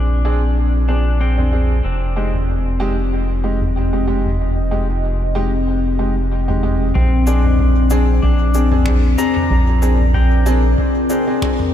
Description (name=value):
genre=ambient dub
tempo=94 BPM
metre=4/4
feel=swing 54% on 16ths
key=Bb mixolydian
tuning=A4 = 440 Hz
part: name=deep dark ambient pad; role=sustained chords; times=0.0-11.7 s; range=C4 to Eb5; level=-21 LUFS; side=left 5 dB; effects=chorus, built-in reverb
part: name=pedal steel guitar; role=arpeggios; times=0.0-11.7 s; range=C4 to Bb5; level=-26 LUFS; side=left 4 dB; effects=vintage 12-bit sampler grit, low-pass filter, dub echo
part: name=round analog bass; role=bass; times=0.0-10.8 s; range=F1 to Bb1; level=-16 LUFS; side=equal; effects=none
part: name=warm upright piano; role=stabs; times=0.2-11.5 s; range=Ab3 to Ab4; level=-24 LUFS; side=right 2 dB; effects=wide subtle chorus, low-pass filter, dub echo
part: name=soft-mallet drum kit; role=drums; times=1.4-11.7 s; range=cabasa, finger snaps, toms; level=-27 LUFS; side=equal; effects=small room reverb, dub echo
part: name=electronic kick drum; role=drums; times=7.0-11.6 s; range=none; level=-22 LUFS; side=equal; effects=none
room=light reverb, studio reverb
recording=none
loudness=-14 LUFS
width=side -10 dB against mid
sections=0.0-7.0 A section; 7.0-11.7 B section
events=none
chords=0.0 Bb7; 1.8 Fm7; 7.0 Bb7